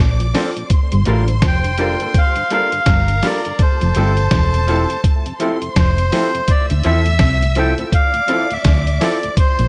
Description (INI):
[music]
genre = lovers rock reggae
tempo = 83 BPM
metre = 4/4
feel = swing 61% on 16ths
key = D minor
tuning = A4 = 440 Hz
[part]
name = warm studio violin section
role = second line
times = 0.0-9.7 s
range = A4 to E6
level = -30 LUFS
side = equal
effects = none
[part]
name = mellow electric guitar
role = riff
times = 0.0-9.7 s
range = E3 to E4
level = -27 LUFS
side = equal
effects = none
[part]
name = vintage muted fingered electric bass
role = bass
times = 0.0-9.7 s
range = E1 to E2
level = -19 LUFS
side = equal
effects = none
[part]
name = mellow tonewheel organ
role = accompaniment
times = 0.2-9.7 s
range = D2 to F4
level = -32 LUFS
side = equal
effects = chorus vibrato, slow rotary speaker, tape echo
[part]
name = lo-fi sampler-style drum kit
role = drums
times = 0.2-9.7 s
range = hi-hat, kick drum, snare drum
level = -18 LUFS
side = equal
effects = none
[part]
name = warm concert grand piano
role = accompaniment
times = 0.3-9.2 s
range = Bb3 to A4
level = -28 LUFS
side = equal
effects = none
[part]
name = electric guitar through a small old amp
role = stabs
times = 0.3-9.2 s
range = F3 to Bb4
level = -26 LUFS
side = equal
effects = none
[part]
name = melodica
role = melody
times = 1.5-9.7 s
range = C5 to G5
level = -22 LUFS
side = equal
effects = tape echo
[sound]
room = digital ambience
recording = nothing above 10.9 kHz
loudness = -16 LUFS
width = mono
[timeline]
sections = 0.0-9.7 A section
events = none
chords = 0.0 Bbmaj9; 0.7 Gm7; 3.6 Fmaj7; 6.5 Dm9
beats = | 0.71 1.43 2.15 2.88 | 3.60 4.32 5.04 5.76 | 6.49 7.21 7.93 8.65 | 9.37